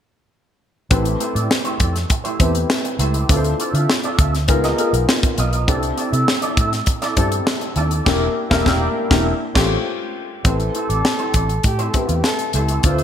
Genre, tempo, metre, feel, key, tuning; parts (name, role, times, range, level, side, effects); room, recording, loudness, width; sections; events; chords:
polished 1980s jazz-funk pop; 101 BPM; 4/4; straight; A minor; A4 = 436 Hz
dark baby grand piano; accompaniment; 0.9-13.0 s; A3 to C5; -23 LUFS; left 3 dB; analog chorus
electric guitar with an envelope filter; riff; 0.9-13.0 s; A3 to E5; -25 LUFS; right 3 dB; ensemble chorus
vintage muted fingered electric bass; bass; 0.9-13.0 s; E1 to D3; -20 LUFS; equal
tight funk drum kit; drums; 0.9-13.0 s; crash cymbal, hi-hat, kick drum, snare drum; -19 LUFS; equal; gated reverb
mellow flugelhorn; melody; 10.5-13.0 s; F4 to C5; -24 LUFS; left 1 dB
moderate plate reverb, RT60 1.8 s, studio reverb; bright 1980s-style digital production; -16 LUFS; side -9 dB against mid
0.9-10.5 A section; 10.5-13.0 B section
band accent 8.1-10.5
0.9 Am7; 3.3 Dm7; 4.5 C#13; 5.7 C69; 8.1 Em7b5; 9.3 A7alt; 10.5 Am7